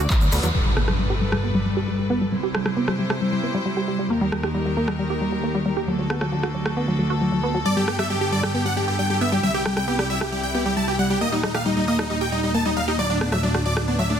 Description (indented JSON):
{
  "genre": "uplifting trance",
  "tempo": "135 BPM",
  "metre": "4/4",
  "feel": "straight",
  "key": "G major",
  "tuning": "A4 = 440 Hz",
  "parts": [
    { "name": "rich chamber string section", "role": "sustained chords", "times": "0.0-14.2 s", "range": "C2 to D5", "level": "-25 LUFS", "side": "equal", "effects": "sidechain pumping" },
    { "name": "tight sequenced synth", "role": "arpeggios", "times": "0.0-14.1 s", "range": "F#3 to G4", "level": "-25 LUFS", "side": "equal", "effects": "chorus, sidechain pumping, digital delay" },
    { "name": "plucky analog bass", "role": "bass", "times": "0.0-0.5 s", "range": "D2 to E2", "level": "-22 LUFS", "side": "equal", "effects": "sidechain pumping" },
    { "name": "big-room dance drum kit", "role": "drums", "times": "0.1-13.9 s", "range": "handclaps, hi-hat, rim click", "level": "-30 LUFS", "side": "right 1 dB", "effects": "overdrive, low-pass filter on snare, studio reverb, sidechain pumping on hats, low-pass filter on hats" },
    { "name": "egg shaker", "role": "percussion", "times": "0.1-0.5 s", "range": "none", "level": "-36 LUFS", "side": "left 4 dB", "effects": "none" },
    { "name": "impact", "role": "sound effects", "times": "0.5-2.3 s", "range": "none", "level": "-26 LUFS", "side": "equal", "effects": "none" },
    { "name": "big supersaw lead", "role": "melody", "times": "7.7-14.2 s", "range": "D4 to A5", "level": "-24 LUFS", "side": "equal", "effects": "sidechain pumping, digital delay" }
  ],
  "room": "light reverb",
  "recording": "dense, heavily limited modern master",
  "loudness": "-20 LUFS",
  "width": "side -8 dB against mid",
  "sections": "0.5-14.2 A section",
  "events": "band accent 0.1; impact 0.5-2.3; filter sweep on synth arpeggio sound 0.5-14.2",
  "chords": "0.0 D; 0.5 Gadd9; 2.3 C; 4.1 Eb; 5.9 D; 7.7 Gadd9; 9.4 C; 11.2 Eb; 13.0 D"
}